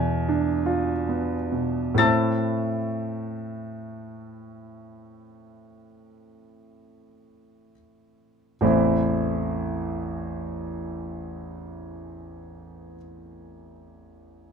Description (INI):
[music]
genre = classical, romantic nocturne for solo piano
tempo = free time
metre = none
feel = none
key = A minor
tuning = A4 = 444 Hz
[part]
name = clear concert grand piano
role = solo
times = 0.0-14.5 s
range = A1 to A6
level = -24 LUFS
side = equal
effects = none
[sound]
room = moderate small room reverb, RT60 0.6 s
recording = dark, warm production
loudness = -23 LUFS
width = side -6 dB against mid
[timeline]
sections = 0.0-8.6 A section; 8.6-14.5 B section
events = slowing down 0.0-8.6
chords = 0.0 E7b9; 2.0 Am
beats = free time